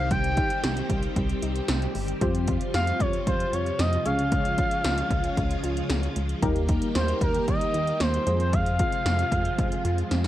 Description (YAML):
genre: synth-pop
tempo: 114 BPM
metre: 4/4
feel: straight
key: F minor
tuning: A4 = 442 Hz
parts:
  - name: expressive portamento lead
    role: melody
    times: 0.0-10.3 s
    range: Bb4 to G5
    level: -28 LUFS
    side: equal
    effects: chorus, tape echo, plate reverb
  - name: warm analog keys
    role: accompaniment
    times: 0.0-10.3 s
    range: Bb3 to Db5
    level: -32 LUFS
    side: left 1 dB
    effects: chorus, plate reverb
  - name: string machine, violins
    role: sustained chords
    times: 0.0-10.3 s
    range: C3 to G4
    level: -33 LUFS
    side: equal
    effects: ensemble chorus, plate reverb
  - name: soft round pluck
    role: arpeggios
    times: 0.0-10.3 s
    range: G3 to F4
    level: -36 LUFS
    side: right 2 dB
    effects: chorus, tape echo, plate reverb
  - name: chorused synth bass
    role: bass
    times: 0.0-10.3 s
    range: G1 to F2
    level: -28 LUFS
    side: equal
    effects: none
  - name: 80s electronic pad drums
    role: drums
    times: 0.1-10.3 s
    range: hi-hat, kick drum, snare drum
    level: -28 LUFS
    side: equal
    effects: gated reverb
room: light reverb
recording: cassette tape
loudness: -23 LUFS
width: side -13 dB against mid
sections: 0.0-10.3 A section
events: drum fill 10.1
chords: 0.0 Cm; 2.2 Fsus2; 4.1 Db; 6.4 Eb; 8.3 Fm